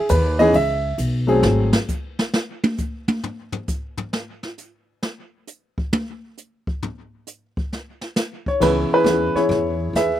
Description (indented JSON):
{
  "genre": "jazz piano trio",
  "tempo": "134 BPM",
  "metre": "4/4",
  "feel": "swing 67% on 8ths",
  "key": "C# minor",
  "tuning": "A4 = 442 Hz",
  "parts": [
    { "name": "warm baby grand piano", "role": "melody", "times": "0.0-1.7, 8.5-10.2 s", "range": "E3 to E5", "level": "-17 LUFS", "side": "equal", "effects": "slapback echo" },
    { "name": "upright bass", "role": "bass", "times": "0.1-1.7, 8.6-10.2 s", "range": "G#1 to E2", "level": "-22 LUFS", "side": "equal", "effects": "none" },
    { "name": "jazz brush drum kit", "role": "drums", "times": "0.1-10.2 s", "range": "brushed snare drum, crash cymbal, hi-hat, kick drum, ride cymbal, snare drum, toms", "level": "-24 LUFS", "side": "equal", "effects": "none" }
  ],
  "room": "little or no reverb",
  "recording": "recorded outdoors, with no room sound",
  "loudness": "-19 LUFS",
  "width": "side -12 dB against mid",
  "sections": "0.0-8.6 A section; 8.6-10.2 B section",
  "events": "grand piano solo 0.0-8.6; drum solo 1.4-8.6",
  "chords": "0.0 C#m7; 1.4 N.C.; 8.6 C#m7"
}